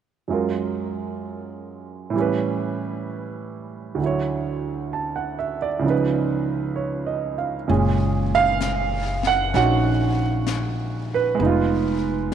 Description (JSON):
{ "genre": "jazz ballad", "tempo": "65 BPM", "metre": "4/4", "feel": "swing 68% on 8ths", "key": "F# major", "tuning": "A4 = 440 Hz", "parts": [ { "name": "clear grand piano", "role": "accompaniment", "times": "0.3-12.3 s", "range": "C#2 to A5", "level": "-22 LUFS", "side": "right 5 dB", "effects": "none" }, { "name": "upright bass", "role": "bass", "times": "7.7-12.3 s", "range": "F1 to A#1", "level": "-24 LUFS", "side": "left 3 dB", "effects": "none" }, { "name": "jazz brush drum kit", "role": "drums", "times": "7.7-12.3 s", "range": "brushed snare drum, hi-hat, snare drum", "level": "-33 LUFS", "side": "left 9 dB", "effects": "none" } ], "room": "light reverb, small room ambience", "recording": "1960s-style stereo", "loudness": "-20 LUFS", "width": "side -8 dB against mid", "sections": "0.3-7.7 A section; 7.7-12.3 B section", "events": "none", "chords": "0.3 F#maj7; 2.1 A7; 4.0 Dmaj7; 5.8 C#7; 7.7 F#maj9; 11.4 Fm7b5" }